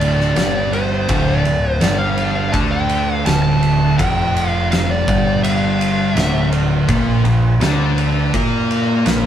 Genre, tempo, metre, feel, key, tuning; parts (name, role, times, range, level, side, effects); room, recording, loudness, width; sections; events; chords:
stoner and doom metal; 83 BPM; 4/4; straight; D minor; A4 = 436 Hz
fuzz lead guitar; melody; 0.0-6.5 s; C5 to A5; -21 LUFS; equal; distortion
thick fuzz guitar; riff; 0.0-9.3 s; D2 to Bb4; -22 LUFS; left 6 dB; distortion
thick fuzz guitar; riff; 0.0-9.3 s; D2 to Bb4; -19 LUFS; right 3 dB; distortion
growling picked electric bass; bass; 0.0-9.3 s; D1 to Bb2; -21 LUFS; equal; overdrive
oversized low-tuned drum kit; drums; 0.0-9.2 s; kick drum, ride cymbal, snare drum; -21 LUFS; equal
moderate studio ambience, RT60 0.5 s; band playing live in one room; -14 LUFS; side -10 dB against mid
0.0-9.3 A section
0.0 Dm; 6.9 C7sus2/Bb (rootless)